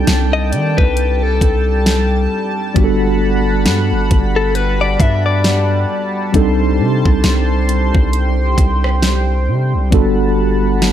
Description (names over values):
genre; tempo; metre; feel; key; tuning
contemporary R&B; 67 BPM; 4/4; swing 58% on 16ths; unclear; A4 = 438 Hz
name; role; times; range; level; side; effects
mellow tine electric piano; accompaniment; 0.0-10.9 s; G3 to A4; -19 LUFS; right 1 dB; medium stereo tremolo
chorused pulse-width pad; sustained chords; 0.0-10.9 s; G3 to C6; -21 LUFS; equal; none
long sustained 808-style bass; bass; 0.0-10.9 s; G1 to Eb3; -16 LUFS; equal; none
smooth R&B drum kit; drums; 0.1-10.9 s; hi-hat, kick drum, rim click, snare drum; -15 LUFS; equal; none
direct-recorded clean electric guitar; arpeggios; 0.3-6.3 s; A4 to E5; -19 LUFS; left 6 dB; spring reverb, tape echo
room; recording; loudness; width
little or no reverb; dark, warm production; -12 LUFS; side -10 dB against mid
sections
0.0-10.9 A section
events
none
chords
0.0 Cm6; 2.8 Gmaj9; 6.3 Cm6; 9.9 Gmaj9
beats
0.07 0.97 1.86 | 2.76 3.65 4.55 5.45 | 6.34 7.24 8.13 9.03 | 9.92 10.82